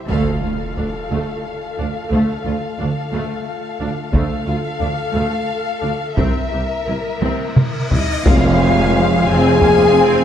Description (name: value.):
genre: cinematic, epic orchestral film score.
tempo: 59 BPM (dotted quarters).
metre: 6/8.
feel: straight.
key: D minor.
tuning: A4 = 440 Hz.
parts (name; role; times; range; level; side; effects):
rich symphonic string section; sustained chords; 0.0-0.1, 8.2-10.2 s; C4 to Ab5; -25 LUFS; left 2 dB; none.
warm symphonic violin section; melody; 0.1-10.2 s; E5 to Ab5; -26 LUFS; left 5 dB; none.
warm symphonic violin section; second line; 0.1-10.2 s; A4 to Ab5; -24 LUFS; left 2 dB; none.
clear symphonic viola section; accompaniment; 0.1-10.2 s; Ab3 to G4; -26 LUFS; right 1 dB; none.
warm French horn section; sustained chords; 0.1-10.2 s; A3 to Ab4; -22 LUFS; left 3 dB; none.
clear symphonic cello section; bass; 0.1-10.2 s; C2 to F2; -22 LUFS; right 2 dB; none.
rich chamber double bass section; bass; 0.1-10.2 s; F1 to D2; -23 LUFS; right 3 dB; none.
taiko ensemble; drums; 0.1-9.9 s; none; -18 LUFS; equal; none.
impact and cymbal swell; sound effects; 0.1-2.1, 7.4-10.2 s; none; -28 LUFS; equal; none.
bright trombone section; sustained chords; 8.3-10.2 s; none; barely audible; none; none.
tam-tam; percussion; 8.3-10.2 s; none; -24 LUFS; left 2 dB; none.
room: moderate scoring stage reverb, RT60 1.6 s.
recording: dark, warm production.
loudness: -15 LUFS.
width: side -9 dB against mid.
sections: 0.1-8.3 A section; 8.3-10.2 B section.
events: band accent 0.1-0.8, 8.3-8.9; impact 0.1-2.1, 8.3-10.2; drum fill 7.2-8.3; cymbal swell 7.4-8.3.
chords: 0.1 Dm; 6.2 C7; 8.3 Fm.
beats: | 0.09 1.10 | 2.11 3.13 | 4.13 5.15 | 6.18 7.22 | 8.26 9.28.